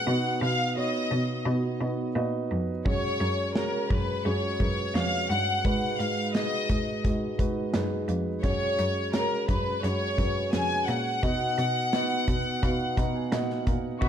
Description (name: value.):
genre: piano-driven pop.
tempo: 86 BPM.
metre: 4/4.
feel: straight.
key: unclear.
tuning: A4 = 443 Hz.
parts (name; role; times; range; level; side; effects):
clear studio violin section; melody; 0.0-13.7 s; A#4 to G#5; -29 LUFS; left 2 dB; tape echo.
dark upright piano; accompaniment; 0.0-14.1 s; G#2 to A#5; -31 LUFS; right 2 dB; none.
rich cello; bass; 0.1-14.1 s; E#2 to B2; -30 LUFS; equal; none.
modern studio drum kit; drums; 2.9-14.1 s; crash cymbal, hi-hat, kick drum, snare drum; -30 LUFS; equal; none.
warm studio string section; sustained chords; 14.0-14.1 s; D#3 to B4; -31 LUFS; left 3 dB; none.
room: light reverb, studio reverb.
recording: dark, warm production.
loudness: -25 LUFS.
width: side -9 dB against mid.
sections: 0.0-14.0 A section.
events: upright piano fill 12.6-14.0.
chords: 0.1 B; 2.9 F#sus2; 5.6 G#m7; 8.4 F#sus2; 11.2 B.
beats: | 0.07 0.76 1.46 2.16 | 2.86 3.56 4.25 4.95 | 5.65 6.35 7.04 7.74 | 8.44 9.14 9.83 10.53 | 11.23 11.93 12.62 13.32 | 14.02.